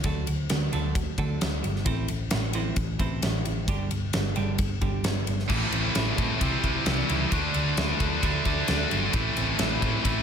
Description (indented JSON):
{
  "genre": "quiet-loud alternative rock",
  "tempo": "132 BPM",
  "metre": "4/4",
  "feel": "straight",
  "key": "A dorian",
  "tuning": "A4 = 440 Hz",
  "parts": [
    { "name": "twelve-string electric guitar", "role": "arpeggios", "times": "0.0-10.2 s", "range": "G2 to E4", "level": "-32 LUFS", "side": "right 4 dB", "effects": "wide subtle chorus" },
    { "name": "hollow-body short-scale picked electric bass", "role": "bass", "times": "0.0-10.2 s", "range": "G1 to A2", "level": "-30 LUFS", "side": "equal", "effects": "none" },
    { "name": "huge arena drum kit", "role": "drums", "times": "0.0-10.2 s", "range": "crash cymbal, kick drum, ride cymbal, snare drum", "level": "-28 LUFS", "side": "equal", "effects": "none" },
    { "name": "scooped high-gain guitar", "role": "riff", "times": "5.5-10.2 s", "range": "A2 to F#4", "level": "-28 LUFS", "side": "left 13 dB", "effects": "distortion" },
    { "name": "scooped high-gain guitar", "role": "riff", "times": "5.5-10.2 s", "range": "A2 to D4", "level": "-30 LUFS", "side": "right 12 dB", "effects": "distortion" }
  ],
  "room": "light reverb, small room ambience",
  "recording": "none",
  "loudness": "-24 LUFS",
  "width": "side -7 dB against mid",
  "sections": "0.0-5.5 A section; 5.5-10.2 B section",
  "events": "none",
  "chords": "0.0 D; 1.9 Am; 3.7 G5; 5.5 Am; 6.4 C; 7.3 Dadd9; 9.1 Am"
}